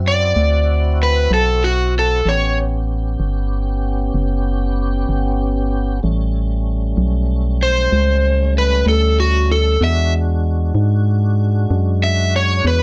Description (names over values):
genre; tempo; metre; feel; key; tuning
slow blues; 64 BPM (dotted quarters); 12/8; straight; A mixolydian; A4 = 439 Hz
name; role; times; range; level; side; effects
tonewheel organ; sustained chords; 0.0-12.8 s; G3 to G4; -27 LUFS; equal; slow rotary speaker, overdrive, chorus vibrato
organ-like FM bass; bass; 0.0-12.8 s; F#1 to G#2; -19 LUFS; equal; none
overdriven slide guitar; melody; 0.1-12.8 s; F#4 to E5; -19 LUFS; equal; none
room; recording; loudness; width
little or no reverb; dark, warm production; -17 LUFS; mono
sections
0.0-12.8 A section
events
none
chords
0.0 D7; 2.3 A7; 9.8 E7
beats
0.37 1.31 | 2.25 3.20 4.14 5.09 | 6.03 6.97 7.92 8.86 | 9.81 10.75 11.69 12.64